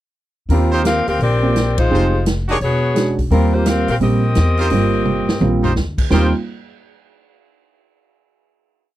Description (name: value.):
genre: jazz, big band swing.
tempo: 172 BPM.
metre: 4/4.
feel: swing 64% on 8ths.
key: Eb major.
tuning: A4 = 442 Hz.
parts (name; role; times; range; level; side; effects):
clear saxophone section; melody; 0.5-6.3 s; G3 to G5; -19 LUFS; left 2 dB; none.
warm concert grand piano; accompaniment; 0.5-6.3 s; G3 to G4; -20 LUFS; right 3 dB; none.
upright bass; bass; 0.5-6.3 s; E1 to Bb2; -18 LUFS; equal; none.
swinging big-band drum kit; drums; 0.5-6.2 s; crash cymbal, hi-hat, kick drum, ride cymbal, snare drum, toms; -21 LUFS; equal; none.
brilliant trumpet section; stabs; 0.7-6.3 s; D4 to Db5; -21 LUFS; right 2 dB; none.
room: little or no reverb.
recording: dry, close 1970s-style studio recording.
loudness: -14 LUFS.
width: side -14 dB against mid.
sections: 0.5-6.1 A section; 6.1-7.5 final chord.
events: band accent 1.7; drum fill 5.1-5.8.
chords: 0.5 Eb69; 1.9 Fm7; 2.6 E13; 3.3 Eb69.